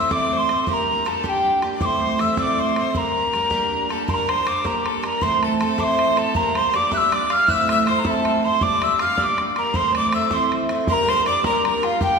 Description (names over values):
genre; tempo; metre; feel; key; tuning
celtic folk, Celtic jig; 106 BPM (dotted quarters); 6/8; straight; G dorian; A4 = 440 Hz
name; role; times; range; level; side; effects
mellow hollow mid whistle; melody; 0.0-12.2 s; F5 to F#6; -20 LUFS; right 1 dB; none
clear fiddle; second line; 0.0-12.2 s; F4 to F5; -27 LUFS; left 5 dB; none
picked twelve-string acoustic guitar; accompaniment; 0.0-12.2 s; A2 to G4; -24 LUFS; right 2 dB; none
bodhran; percussion; 0.0-12.1 s; none; -28 LUFS; equal; none
room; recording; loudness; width
wet concert hall reverb, RT60 1.9 s; recorded in a church or concert hall; -18 LUFS; side -5 dB against mid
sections
0.0-4.1 A section; 4.1-12.2 B section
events
none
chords
0.0 Am; 0.7 Gm; 1.8 Am; 2.9 Gm; 5.2 Am; 6.3 Gm; 7.5 Am; 8.6 Gm; 9.7 Am; 10.9 Gm